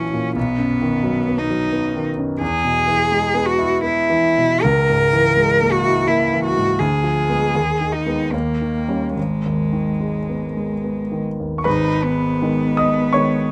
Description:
classical, romantic duo for cello and grand piano; 71-89 BPM; 3/4; rubato; G# minor; A4 = 440 Hz
rich cello; melody; 0.0-13.5 s; G#3 to A#4; -21 LUFS; equal
clear grand piano; accompaniment; 0.0-13.5 s; G#1 to D#6; -22 LUFS; equal
light reverb; close, detailed microphones; -19 LUFS; mono
0.0-11.7 A section; 11.7-13.5 B section
0.4 B; 2.4 E; 4.6 A#m7b5/C#; 6.8 Ddim7; 7.5 G#m/D#; 8.3 D#7; 9.2 G#m
| 0.36 1.05 1.73 | 2.41 3.11 3.83 | 4.62 5.35 6.08 | 6.80 7.53 8.33 | 9.16 10.01 10.84 | 11.66 12.42 13.15

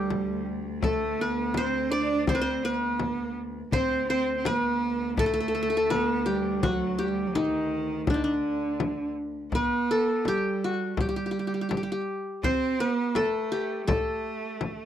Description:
Turkish makam ensemble; 83 BPM; 4/4; straight; D makam hicaz; A4 = 440 Hz
qanun; melody; 0.0-14.9 s; D4 to D5; -28 LUFS; left 2 dB; slapback echo
bright cello; second line; 0.0-14.9 s; D3 to D4; -30 LUFS; right 5 dB
clear cello; drone; 0.0-9.6 s; D2; -36 LUFS; left 3 dB; stereo widening
frame drum; percussion; 0.1-14.8 s; -30 LUFS; left 2 dB
light reverb; dry, close 1970s-style studio recording; -25 LUFS; side -10 dB against mid
0.0-9.5 A section; 9.5-14.9 B section
0.09 | 0.82 1.54 2.27 3.00 | 3.72 4.45 5.17 5.90 | 6.63 7.35 8.08 8.80 | 9.53 10.26 10.98 11.71 | 12.44 13.16 13.89 14.61

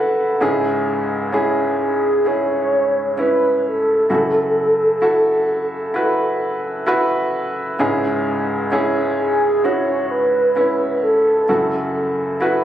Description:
pop ballad; 65 BPM; 4/4; straight; C# minor; A4 = 440 Hz
clear baby grand piano; accompaniment; 0.0-12.6 s; C#2 to F#5; -19 LUFS; equal
mellow horn-like synth lead; melody; 1.8-12.4 s; G#4 to C#5; -17 LUFS; equal; chorus
wet plate reverb, RT60 3.4 s; recorded on a phone in the room, club reverb, compression; -16 LUFS; side -11 dB against mid
0.0-12.6 A section
grand piano fill 0.0-0.4
0.4 C#m; 4.1 F#m7; 7.8 C#m; 11.5 F#m7
| 0.41 1.33 2.25 3.18 | 4.10 5.02 5.95 6.87 | 7.79 8.71 9.64 10.56 | 11.48 12.41

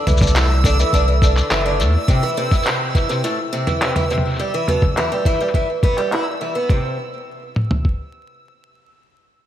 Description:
folktronica; 104 BPM; 4/4; straight; A4 = 438 Hz
picked twelve-string acoustic guitar; arpeggios; 0.0-7.0 s; A2 to E4; -20 LUFS; equal; ping-pong delay
backwards swelling texture; texture; 0.0-6.7 s; E6; -27 LUFS; right 1 dB; built-in reverb, lush chorus
warm sub bass; bass; 0.1-2.0 s; F#1 to E2; -16 LUFS; equal
lo-fi sampler-style drum kit; drums; 0.1-6.7 s; handclaps, shaker, toms; -23 LUFS; equal; low-pass filter on perc, studio reverb, low-pass filter on snare, low-pass filter on toms
lo-fi sampler-style drum kit; drums; 0.2-8.0 s; kick drum, toms; -17 LUFS; equal; studio reverb
moderate plate reverb, RT60 2.8 s; dreamy mix soaked in reverb, vinyl crackle; -16 LUFS; side -11 dB against mid
0.0-6.7 A section; 6.7-9.0 B section
filter sweep on drum 0.0-6.7
0.0 Dadd9/C; 2.1 Am/C (rootless); 4.4 Em; 6.7 N.C.
0.35 0.93 1.51 | 2.08 2.66 3.24 3.81 | 4.39 4.97 5.54 6.12 | 6.70 7.28 7.85

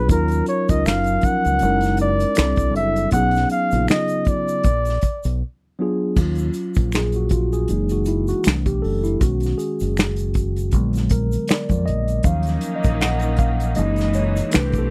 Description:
R&B, neo-soul; 79 BPM; 4/4; swing 56% on 16ths; Eb minor; A4 = 439 Hz
warm flugelhorn; melody; 0.0-5.4 s; Bb4 to F#5; -24 LUFS; equal
mellow tine electric piano; accompaniment; 0.0-14.9 s; Db3 to Gb5; -25 LUFS; equal; subtle chorus
deep dub fingered electric bass; bass; 0.0-14.9 s; Gb1 to F2; -24 LUFS; equal
unplugged drum kit; drums; 0.1-14.9 s; crash cymbal, finger snaps, hi-hat, kick drum, snare drum; -23 LUFS; equal
egg shaker and finger snaps; percussion; 0.1-14.9 s; -40 LUFS; equal
clear studio string section; sustained chords; 12.2-14.9 s; Eb3 to G4; -31 LUFS; equal
little or no reverb; dry, close 1970s-style studio recording; -20 LUFS; mono
0.0-6.2 A section; 6.2-14.9 B section
break 5.4-6.2; tine electric piano solo 6.2-14.9
0.1 Ebm9; 1.6 Gb13; 2.4 C6; 3.1 B6; 4.7 Bb7b9b13; 6.2 Ebm9; 7.7 Gb13; 8.4 C6; 9.2 B6; 10.7 Bb7b9b13; 12.2 Ebm9; 13.8 Gb13
| 0.10 0.85 1.61 2.37 | 3.13 3.89 4.65 5.41 | 6.17 6.93 7.69 8.45 | 9.21 9.97 10.73 11.49 | 12.25 13.01 13.77 14.53

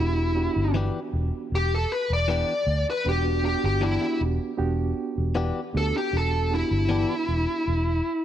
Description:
blues; 78 BPM; 4/4; straight; E minor; A4 = 437 Hz
smooth overdriven lead guitar; melody; 0.0-8.2 s; E4 to D5; -26 LUFS; left 1 dB
mellow reed electric piano; accompaniment; 0.0-7.9 s; B3 to G4; -30 LUFS; right 6 dB; fast tremolo
vintage muted fingered electric bass; bass; 0.0-8.0 s; E1 to D2; -25 LUFS; equal
direct-recorded clean electric guitar; stabs; 0.7-7.1 s; E3 to G4; -32 LUFS; left 5 dB
little or no reverb; -22 LUFS; side -10 dB against mid
0.0-8.2 A section
lead electric guitar solo 0.0-8.2
0.0 Em7
0.75 1.52 2.29 | 3.05 3.82 4.59 5.36 | 6.13 6.90 7.67

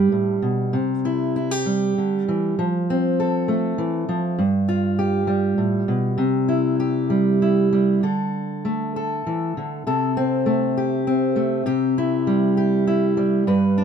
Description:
folk, solo fingerstyle acoustic guitar; 99 BPM; 3/4; rubato; C major; A4 = 442 Hz
fingerpicked steel-string acoustic guitar; solo; 0.0-13.8 s; G2 to B4; -18 LUFS; equal
light reverb; minimal, uncompressed stereo recording; -19 LUFS; side -7 dB against mid
0.0-8.0 A section; 8.0-13.8 B section
0.0 G; 0.7 C; 2.6 F; 4.4 G7; 6.2 C; 8.0 D5; 9.9 Am7/C; 11.7 C
0.12 | 0.74 1.36 1.98 | 2.59 3.20 3.80 | 4.39 4.99 5.58 | 6.18 6.79 7.41 | 8.04 8.65 9.26 | 9.87 10.47 11.07 | 11.67 12.26 12.86 | 13.46

